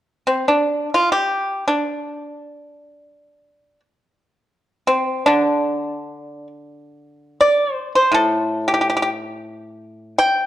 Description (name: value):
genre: chinese traditional, Chinese solo plucked strings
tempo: free time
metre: none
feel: none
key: unclear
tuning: A4 = 440 Hz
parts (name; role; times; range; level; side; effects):
- pipa; solo; 0.3-10.5 s; A2 to G5; -17 LUFS; equal; none
room: moderate recital hall reverb, RT60 1.3 s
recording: dark, warm production, tape saturation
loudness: -16 LUFS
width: side -13 dB against mid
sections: 0.0-6.7 A section; 6.7-10.5 B section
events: none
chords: none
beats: free time